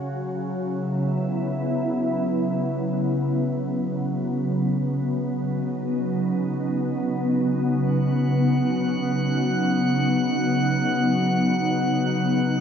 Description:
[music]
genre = ambient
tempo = free time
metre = none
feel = none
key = unclear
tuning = A4 = 440 Hz
[part]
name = glassy FM pad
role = sustained chords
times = 0.0-12.6 s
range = G#2 to F#4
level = -21 LUFS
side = equal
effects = ensemble chorus, built-in reverb
[part]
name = drifting glass-harmonics texture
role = texture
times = 8.2-12.6 s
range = F#5 to F#6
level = -28 LUFS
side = left 1 dB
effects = chorus, built-in reverb
[sound]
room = wet cathedral reverb, RT60 5.2 s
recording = nothing above 7.7 kHz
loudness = -21 LUFS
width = side -7 dB against mid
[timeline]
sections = 0.0-12.6 A section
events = none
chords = 0.0 C#m7; 3.1 C#9sus4

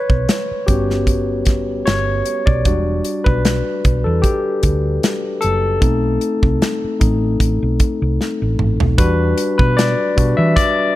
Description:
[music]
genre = lush 1970s-style soul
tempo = 76 BPM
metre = 4/4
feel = swing 54% on 16ths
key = unclear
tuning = A4 = 440 Hz
[part]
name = barky tine electric piano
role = accompaniment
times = 0.0-11.0 s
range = G3 to E5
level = -18 LUFS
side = left 2 dB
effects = overdrive
[part]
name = hollow-body short-scale fingered electric bass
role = bass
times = 0.1-10.5 s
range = E1 to E3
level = -19 LUFS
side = right 1 dB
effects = none
[part]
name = modern studio drum kit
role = drums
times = 0.1-10.8 s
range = hi-hat, kick drum, snare drum, toms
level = -17 LUFS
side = equal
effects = none
[sound]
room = light reverb, small room ambience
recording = dark, warm production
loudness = -14 LUFS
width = side -15 dB against mid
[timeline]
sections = 0.0-9.0 A section; 9.0-11.0 B section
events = tine electric piano solo 0.0-9.0, 9.0-11.0; drum fill 8.2-9.0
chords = 0.0 A13 (rootless); 2.7 Em7; 5.8 B7b9; 9.0 Em7

